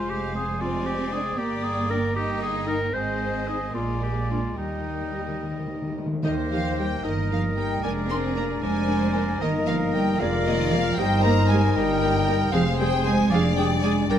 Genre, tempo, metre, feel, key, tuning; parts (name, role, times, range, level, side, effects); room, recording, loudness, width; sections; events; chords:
quick classical-period movement for symphony orchestra; 76 BPM (dotted quarters); 6/8; rubato; Eb major; A4 = 439 Hz
warm studio violin section; melody; 0.0-14.2 s; D5 to C6; -34 LUFS; right 1 dB
clear clarinet; second line; 0.0-14.2 s; Eb4 to C5; -31 LUFS; left 1 dB
clear oboe; second line; 0.0-14.2 s; C5 to G5; -36 LUFS; right 1 dB
mellow silver concert flute; second line; 0.0-14.2 s; D5 to C6; -33 LUFS; left 3 dB
warm studio violin section; second line; 0.0-14.2 s; Ab4 to Eb5; -34 LUFS; left 5 dB
warm studio viola section; accompaniment; 0.0-14.2 s; G3 to Bb4; -33 LUFS; right 1 dB
rich studio cello section; bass; 0.0-14.2 s; D3 to Eb4; -28 LUFS; right 3 dB
warm studio double bass section; bass; 0.0-14.2 s; F1 to Eb2; -28 LUFS; right 2 dB
mellow French horn section; sustained chords; 0.3-14.2 s; G3 to F4; -30 LUFS; left 6 dB
timpani; percussion; 4.6-7.0 s; Eb3; -30 LUFS; left 1 dB
mellow trumpet; stabs; 6.3-14.2 s; G4 to Bb4; -34 LUFS; right 3 dB
light reverb; -22 LUFS; side -9 dB against mid
0.0-6.2 A section; 6.2-14.2 B section
timpani fill 4.6-6.2
0.0 Fm; 0.6 Ddim/F; 1.4 Gm; 2.2 Eb/G; 2.9 Ab; 3.7 Bb7; 4.6 Eb; 7.0 Eb/G; 7.8 Bb7/F; 9.4 Eb/G; 10.2 Bb7/F; 11.0 Eb/G; 12.5 Fm; 13.3 Ddim/F